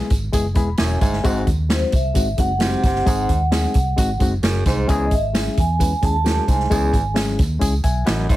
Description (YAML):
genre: uptempo 1960s-style soul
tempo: 132 BPM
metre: 4/4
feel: straight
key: unclear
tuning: A4 = 440 Hz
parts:
  - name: barky reed electric piano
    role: accompaniment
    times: 0.0-8.4 s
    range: G#3 to B5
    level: -24 LUFS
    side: left 3 dB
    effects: overdrive
  - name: vintage muted fingered electric bass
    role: bass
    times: 0.1-8.4 s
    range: E1 to E2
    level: -22 LUFS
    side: equal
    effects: none
  - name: swinging big-band drum kit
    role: drums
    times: 0.1-8.4 s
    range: hi-hat, kick drum, snare drum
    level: -20 LUFS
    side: equal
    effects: none
  - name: tambourine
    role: percussion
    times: 0.1-8.4 s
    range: none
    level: -36 LUFS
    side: right 4 dB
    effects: none
  - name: warm baritone saxophone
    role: riff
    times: 0.8-8.4 s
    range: E2 to B#2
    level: -26 LUFS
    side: right 3 dB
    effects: none
  - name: vibraphone with soft mallets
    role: melody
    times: 1.7-7.1 s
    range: B#4 to A5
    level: -23 LUFS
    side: right 2 dB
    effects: none
room: light reverb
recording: heavily compressed radio sound, multiband compression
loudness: -16 LUFS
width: side -15 dB against mid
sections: 0.0-8.4 A section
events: reed electric piano fill 0.3-1.2, 7.8-8.4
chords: 0.0 E; 1.2 G#7; 4.9 C#m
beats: 0.34 0.79 | 1.25 1.70 2.16 2.61 | 3.07 3.52 3.98 4.43 | 4.89 5.34 5.80 6.25 | 6.71 7.16 7.62 8.07